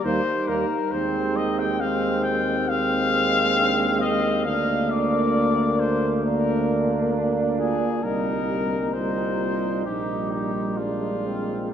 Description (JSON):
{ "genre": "classical, brass quintet", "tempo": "67 BPM", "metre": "4/4", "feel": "rubato", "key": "unclear", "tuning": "A4 = 439 Hz", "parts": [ { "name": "mellow trumpet", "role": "melody", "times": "0.0-11.7 s", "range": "F4 to G5", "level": "-26 LUFS", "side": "left 4 dB", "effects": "none" }, { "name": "warm bass trombone", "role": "bass", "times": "0.0-11.7 s", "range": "Bb1 to Eb2", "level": "-28 LUFS", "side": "equal", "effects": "none" }, { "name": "warm flugelhorn", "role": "second line", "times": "0.1-11.7 s", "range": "Bb3 to Eb4", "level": "-29 LUFS", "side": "right 4 dB", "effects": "none" }, { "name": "mellow French horn", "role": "accompaniment", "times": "0.1-11.7 s", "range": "Bb3 to G4", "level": "-31 LUFS", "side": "left 2 dB", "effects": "none" }, { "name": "warm trombone", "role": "accompaniment", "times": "0.1-11.7 s", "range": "G3 to Bb3", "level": "-27 LUFS", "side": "right 2 dB", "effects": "none" } ], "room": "wet cathedral reverb, RT60 6.5 s", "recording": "none", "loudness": "-21 LUFS", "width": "side -8 dB against mid", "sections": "0.0-11.7 A section", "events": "none", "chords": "0.0 Eb; 0.9 Fm7/Eb; 4.5 Bb/D; 8.0 Cm7; 9.9 Eb/Bb; 10.8 Bb7" }